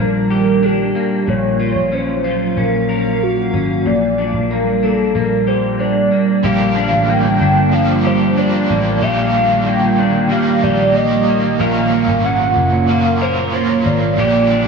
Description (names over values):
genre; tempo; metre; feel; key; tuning
dream pop; 93 BPM; 4/4; straight; unclear; A4 = 436 Hz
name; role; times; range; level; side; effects
warm velvety synth lead; melody; 0.0-14.7 s; Gb4 to G5; -18 LUFS; right 1 dB; chorus, tape echo
warbly tape-like pad; sustained chords; 0.0-14.7 s; Eb3 to F5; -18 LUFS; right 2 dB; chorus, built-in reverb, phaser
electric guitar at the edge of break-up; arpeggios; 0.0-14.7 s; Bb2 to Bb4; -20 LUFS; left 4 dB; ensemble chorus, tape echo
vintage muted picked electric bass; bass; 0.0-14.7 s; Gb1 to Bb1; -21 LUFS; equal; none
crunchy overdriven guitar; accompaniment; 6.4-14.7 s; Bb2 to G4; -22 LUFS; right 4 dB; tremolo, lush chorus
room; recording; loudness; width
wet lush hall reverb, RT60 2.4 s; studio ambience; -13 LUFS; side -5 dB against mid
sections
0.0-6.4 A section; 6.4-14.7 B section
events
none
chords
0.0 Ebmaj7/Bb; 1.3 Gbmaj7/Bb; 3.9 Gm7/Bb; 6.4 Bb6; 9.0 Ebmaj7/Bb; 11.6 Gbmaj7